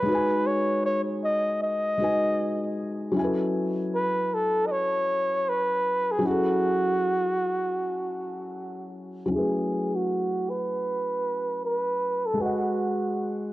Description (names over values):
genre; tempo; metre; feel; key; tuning
hip hop; 78 BPM; 4/4; swing 61% on 16ths; F# dorian; A4 = 439 Hz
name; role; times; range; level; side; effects
breathy flugelhorn; melody; 0.0-13.5 s; F#4 to D#5; -25 LUFS; right 1 dB; low-pass filter
felt-muted upright piano; accompaniment; 0.0-13.5 s; F#3 to G#5; -28 LUFS; left 1 dB; low-pass filter
room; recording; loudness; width
moderate plate reverb, RT60 2.6 s; worn, warbling old tape, cassette tape, warbly pitch drift; -24 LUFS; side -16 dB against mid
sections
0.0-9.3 A section; 9.3-13.5 B section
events
filter sweep 9.3-13.5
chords
0.1 G#m7; 3.2 F#m11; 6.2 F#m9; 9.3 F#m11; 12.4 G#m7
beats
| 0.08 0.85 1.61 2.38 | 3.15 3.92 4.69 5.46 | 6.23 7.00 7.77 8.54 | 9.31 10.08 10.85 11.62 | 12.38 13.15